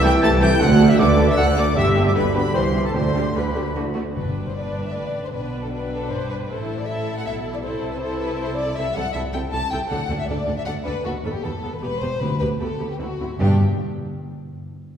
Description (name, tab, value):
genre	quick classical-period movement for symphony orchestra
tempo	155 BPM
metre	3/4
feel	rubato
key	G major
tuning	A4 = 440 Hz
part	rich chamber violin section	melody	0.0-13.6 s	G5 to A6	-35 LUFS	left 2 dB	none
part	bright clarinet	second line	0.0-3.9 s	F#4 to A4	-32 LUFS	left 2 dB	none
part	clear oboe	second line	0.0-3.8 s	A4 to A5	-28 LUFS	equal	none
part	large flute ensemble	second line	0.0-3.8 s	A4 to A5	-29 LUFS	left 1 dB	none
part	warm chamber violin section	second line	0.0-13.6 s	C4 to A5	-28 LUFS	left 3 dB	none
part	rich chamber viola section	accompaniment	0.0-13.6 s	D3 to B4	-28 LUFS	equal	none
part	warm bassoon	accompaniment	0.0-3.9 s	D3 to E3	-26 LUFS	right 1 dB	none
part	mellow French horn section	sustained chords	0.0-4.2 s	D4 to B4	-26 LUFS	left 2 dB	none
part	mellow trumpet	stabs	0.0-3.8 s	A4 to A5	-25 LUFS	right 1 dB	none
part	rich chamber cello section	bass	0.0-13.6 s	C2 to C3	-26 LUFS	right 3 dB	none
part	rich chamber double bass section	bass	0.0-13.6 s	E1 to D#2	-25 LUFS	right 1 dB	none
part	timpani	percussion	0.6-4.7, 9.9-13.6 s	G2 to D3	-27 LUFS	equal	none
room	wet concert hall reverb, RT60 2.1 s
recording	heard from further back in the room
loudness	-19 LUFS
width	side -8 dB against mid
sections	0.0-4.2 A section; 4.2-13.4 A section; 13.4-14.6 B section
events	none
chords	0.0 Am/C; 0.6 D; 1.8 G; 2.5 C; 2.9 G/D; 3.8 D; 4.2 G; 5.3 G/B; 6.5 A5; 7.6 Am/C; 9.9 D5; 11.0 B7/D#; 11.8 Em; 12.2 G/D; 13.0 D9; 13.4 G